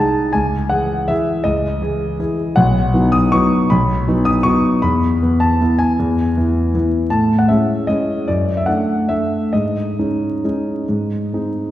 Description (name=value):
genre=classical, piano waltz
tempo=131-168 BPM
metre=3/4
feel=rubato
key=C# minor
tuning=A4 = 440 Hz
part: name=warm concert grand piano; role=solo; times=0.0-11.7 s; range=B1 to D#6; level=-14 LUFS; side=equal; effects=none
room=wet concert hall reverb, RT60 1.8 s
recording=heard from further back in the room, vinyl crackle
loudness=-14 LUFS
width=side -13 dB against mid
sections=0.0-11.7 A section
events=none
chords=0.3 C#m; 2.6 B; 4.8 E; 7.1 Amaj7; 8.3 D/F#; 9.5 G#sus4; 10.9 G#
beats=| 0.34 0.71 1.08 | 1.45 1.82 2.19 | 2.57 2.94 3.33 | 3.71 4.08 4.46 | 4.84 5.21 5.60 | 5.98 6.36 6.74 | 7.12 7.49 7.89 | 8.29 8.68 9.10 | 9.54 9.98 10.44 | 10.88 11.33